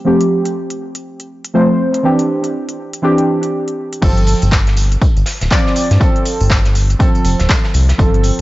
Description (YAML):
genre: deep house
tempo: 121 BPM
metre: 4/4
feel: swing 61% on 16ths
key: unclear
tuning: A4 = 441 Hz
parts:
  - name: deep mellow chord stab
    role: stabs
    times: 0.0-8.4 s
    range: E3 to D5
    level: -15 LUFS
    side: equal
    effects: chorus, sidechain pumping, tape echo
  - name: deep house drum kit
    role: drums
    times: 0.2-8.4 s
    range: crash cymbal, handclaps, hi-hat, tambourine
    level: -22 LUFS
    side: equal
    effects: none
  - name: round analog bass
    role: bass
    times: 4.0-8.4 s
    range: D1 to G2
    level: -13 LUFS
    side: equal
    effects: sidechain pumping
  - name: electronic kick drum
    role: drums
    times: 4.0-8.1 s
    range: none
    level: -14 LUFS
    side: equal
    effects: none
  - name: tambourine and snare drum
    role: drums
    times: 4.0-8.4 s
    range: none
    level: -28 LUFS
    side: right 1 dB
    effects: high-pass filter on snare, sidechain pumping on perc, high-pass filter on perc, high-pass filter on room
room: light reverb, digital ambience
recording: cassette tape, nothing above 7.6 kHz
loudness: -12 LUFS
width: side -17 dB against mid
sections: 0.0-4.0 A section; 4.0-8.4 B section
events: drop 4.0-8.4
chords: 0.0 G9sus4; 2.0 D9sus4; 4.0 G9sus4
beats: | 0.06 0.55 1.05 1.54 | 2.04 2.54 3.03 3.53 | 4.02 4.52 5.01 5.51 | 6.01 6.50 7.00 7.50 | 7.99